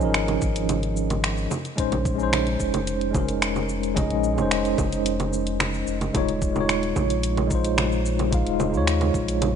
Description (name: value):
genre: sunset chillout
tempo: 110 BPM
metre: 4/4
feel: straight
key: unclear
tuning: A4 = 440 Hz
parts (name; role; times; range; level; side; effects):
- tine electric piano; accompaniment; 0.0-9.6 s; F3 to F5; -24 LUFS; moving between left 5 dB and right 6 dB; medium stereo tremolo, auto-pan, digital delay
- warm sub bass; bass; 0.0-9.6 s; Eb1 to Eb2; -27 LUFS; equal; none
- smooth R&B drum kit; drums; 0.0-9.5 s; cabasa, congas, finger snaps, hi-hat; -27 LUFS; right 2 dB; studio reverb
- electronic kick drum; drums; 0.4-9.3 s; none; -27 LUFS; equal; studio reverb
room: light reverb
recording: nothing above 10.5 kHz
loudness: -21 LUFS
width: side -7 dB against mid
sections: 0.0-9.6 A section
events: none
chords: 0.0 Db69; 1.5 Bbm11; 6.1 Eb9sus4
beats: 0.14 0.69 1.24 | 1.78 2.33 2.87 3.42 | 3.96 4.51 5.05 5.60 | 6.14 6.69 7.24 7.78 | 8.33 8.87 9.42